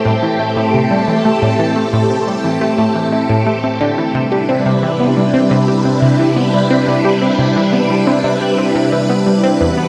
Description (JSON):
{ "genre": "ambient, sequencer-driven space music", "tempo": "88 BPM", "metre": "4/4", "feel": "straight", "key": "unclear", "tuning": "A4 = 440 Hz", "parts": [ { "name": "phased string machine", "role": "sustained chords", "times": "0.0-9.9 s", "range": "E2 to B4", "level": "-16 LUFS", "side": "equal", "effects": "ensemble chorus, phaser" }, { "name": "analog pluck", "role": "riff", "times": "0.1-9.8 s", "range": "E2 to G4", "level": "-18 LUFS", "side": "equal", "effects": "chorus, phaser, analog delay" } ], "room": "wet cathedral reverb, RT60 4.8 s", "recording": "in a vast, echoing space", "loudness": "-14 LUFS", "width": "mono", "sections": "0.0-9.9 A section", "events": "none", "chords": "0.0 Am7; 4.1 Cmaj7" }